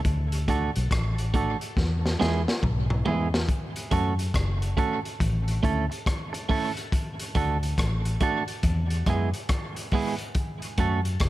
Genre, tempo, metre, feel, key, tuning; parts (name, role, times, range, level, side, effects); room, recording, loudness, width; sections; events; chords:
roots reggae; 70 BPM; 4/4; swing 64% on 16ths; F# minor; A4 = 440 Hz
crunchy breakbeat drum kit; drums; 0.0-11.3 s; hi-hat, kick drum, rim click, snare drum, toms; -27 LUFS; left 1 dB
vintage muted fingered electric bass; bass; 0.1-11.3 s; F#1 to F#2; -26 LUFS; left 1 dB
clean electric guitar; accompaniment; 0.5-11.0 s; G#3 to A4; -30 LUFS; right 5 dB; dub echo
small room ambience; -24 LUFS; side -16 dB against mid
0.0-3.5 A section; 3.5-11.3 B section
drum fill 1.8-3.5
0.1 D; 1.8 E; 3.5 F#m; 5.2 A; 6.9 D; 8.6 E; 10.4 F#m